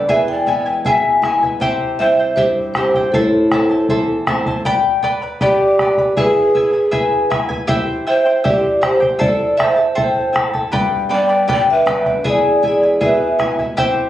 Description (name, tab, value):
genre	andean folk, Andean ensemble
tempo	79 BPM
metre	2/4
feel	straight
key	unclear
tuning	A4 = 439 Hz
part	vibraphone with soft mallets	melody	0.0-13.6 s	A4 to G#5	-16 LUFS	right 1 dB	plate reverb
part	breathy mellow large pan pipes	second line	0.0-13.6 s	E4 to E5	-18 LUFS	equal	none
part	charango	accompaniment	0.0-14.1 s	E4 to B5	-20 LUFS	left 2 dB	none
part	flamenco guitar	accompaniment	0.0-4.6, 10.7-14.1 s	E2 to E4	-24 LUFS	equal	none
part	bombo	percussion	0.1-14.0 s	none	-22 LUFS	equal	none
room	moderate studio ambience, RT60 0.5 s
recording	recorded on a phone in the room, club reverb, compression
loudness	-13 LUFS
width	side -12 dB against mid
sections	0.0-4.7 A section; 4.7-14.1 A section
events	none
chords	0.1 E; 1.6 C; 3.1 Am; 4.7 G; 6.2 E; 7.7 C; 9.2 Am; 10.7 G; 12.3 E